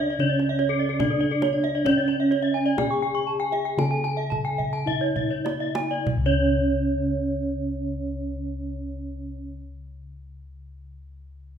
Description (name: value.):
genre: Balinese gamelan.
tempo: 48-78 BPM.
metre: 4/4.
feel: straight.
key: C# pelog.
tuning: A4 = 441 Hz.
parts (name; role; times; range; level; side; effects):
gamelan-type bronze metallophone; melody; 0.0-9.5 s; C#4 to A4-40c; -26 LUFS; right 2 dB; none.
gamelan-type bronze metallophone; arpeggios; 0.0-9.5 s; A4-40c to C#6; -30 LUFS; right 6 dB; none.
gamelan-type bossed gongs; bass; 0.0-9.4 s; C#2 to D4; -30 LUFS; left 2 dB; none.
gamelan-type bronze metallophone; arpeggios; 0.1-9.5 s; A4-40c to C#6; -28 LUFS; left 4 dB; none.
kendang; percussion; 0.2-6.7 s; none; -32 LUFS; right 2 dB; none.
room: moderate recital hall reverb, RT60 1.5 s.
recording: minimal, uncompressed stereo recording.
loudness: -22 LUFS.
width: side -8 dB against mid.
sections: 0.0-6.1 A section; 6.1-11.1 B section.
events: slowing down 0.0-6.1; drum fill 4.6-6.1.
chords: none.